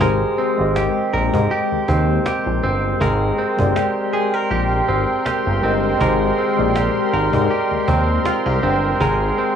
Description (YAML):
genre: contemporary R&B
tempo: 80 BPM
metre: 4/4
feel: swing 54% on 16ths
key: unclear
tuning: A4 = 437 Hz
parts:
  - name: mellow tine electric piano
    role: accompaniment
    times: 0.0-9.6 s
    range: Ab3 to Eb5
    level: -22 LUFS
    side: left 4 dB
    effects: slow stereo tremolo, cassette tape
  - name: warm analog pad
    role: sustained chords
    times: 0.0-9.6 s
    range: Bb4 to C6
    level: -24 LUFS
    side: equal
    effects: chorus, cassette tape
  - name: direct-recorded clean electric guitar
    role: arpeggios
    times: 0.0-9.6 s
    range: Ab3 to Bb4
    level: -21 LUFS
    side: right 4 dB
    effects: cassette tape, tape echo
  - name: fat analog bass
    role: bass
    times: 0.0-9.3 s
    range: G1 to Ab2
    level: -20 LUFS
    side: equal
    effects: none
  - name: cajon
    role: drums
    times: 0.0-9.5 s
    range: none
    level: -25 LUFS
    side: equal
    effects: cassette tape
room: light reverb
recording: home recording on cassette, studio ambience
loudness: -16 LUFS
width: side -8 dB against mid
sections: 0.0-9.6 A section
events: none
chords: 0.0 Abmaj9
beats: | 0.01 0.76 1.51 2.26 | 3.01 3.76 4.51 5.26 | 6.01 6.76 7.51 8.26 | 9.01